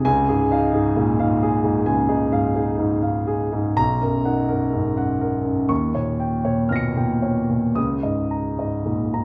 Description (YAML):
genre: classical, impressionist solo piano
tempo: 54-66 BPM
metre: 4/4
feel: rubato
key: Db mixolydian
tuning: A4 = 440 Hz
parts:
  - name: warm concert grand piano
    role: solo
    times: 0.0-9.2 s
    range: Cb2 to Db7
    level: -21 LUFS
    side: equal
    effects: none
room: wet recital hall reverb, RT60 1.4 s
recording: dark, warm production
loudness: -21 LUFS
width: mono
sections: 0.0-9.2 A section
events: none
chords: 0.0 Dbadd9; 3.8 Cbmaj7; 5.7 Eb9; 7.8 Dbsus2